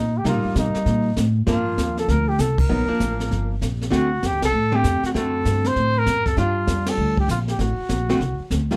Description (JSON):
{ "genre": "jazz, small-group swing and bop", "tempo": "196 BPM", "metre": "4/4", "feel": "swing 63% on 8ths", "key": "G minor", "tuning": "A4 = 439 Hz", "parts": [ { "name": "dark trumpet", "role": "melody", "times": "0.0-8.5 s", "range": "Eb4 to C5", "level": "-27 LUFS", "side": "equal", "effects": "none" }, { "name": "upright bass", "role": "bass", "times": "0.0-8.8 s", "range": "G1 to C3", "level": "-25 LUFS", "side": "equal", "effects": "none" }, { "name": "archtop guitar, miked and amplified", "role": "accompaniment", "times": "0.2-8.8 s", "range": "D3 to F#4", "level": "-26 LUFS", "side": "equal", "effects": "none" }, { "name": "jazz brush drum kit", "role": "drums", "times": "0.2-8.8 s", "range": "brushed snare drum, crash cymbal, hi-hat, kick drum, ride cymbal, snare drum", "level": "-29 LUFS", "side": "equal", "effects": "none" } ], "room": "light reverb", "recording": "dark, warm production", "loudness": "-21 LUFS", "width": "mono", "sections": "0.0-8.8 A section", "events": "band accent 2.5, 4.4, 6.8", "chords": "0.0 Cm7 (rootless); 1.5 Gm7; 3.9 D7; 6.4 Gm7; 7.6 D7" }